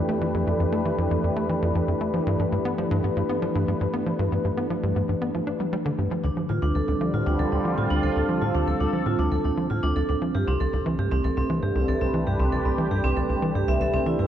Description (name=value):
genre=ambient, sequencer-driven space music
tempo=117 BPM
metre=4/4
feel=straight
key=D dorian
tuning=A4 = 443 Hz
part: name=sweeping resonant pad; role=sustained chords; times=0.0-14.3 s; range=C2 to B4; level=-26 LUFS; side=equal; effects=chorus
part: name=tight sequencer bass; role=riff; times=0.0-14.3 s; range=C2 to D4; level=-25 LUFS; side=equal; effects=analog chorus, ping-pong delay
part: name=vibraphone with medium hard mallets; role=arpeggios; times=6.2-14.3 s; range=C4 to E5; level=-28 LUFS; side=right 2 dB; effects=auto-pan, ping-pong delay
room=wet plate reverb, RT60 3.5 s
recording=worn, warbling old tape, cassette tape, warbly pitch drift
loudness=-22 LUFS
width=side -10 dB against mid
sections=0.0-14.3 A section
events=none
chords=0.0 Fmaj7; 2.1 G; 6.2 Dm; 10.3 C6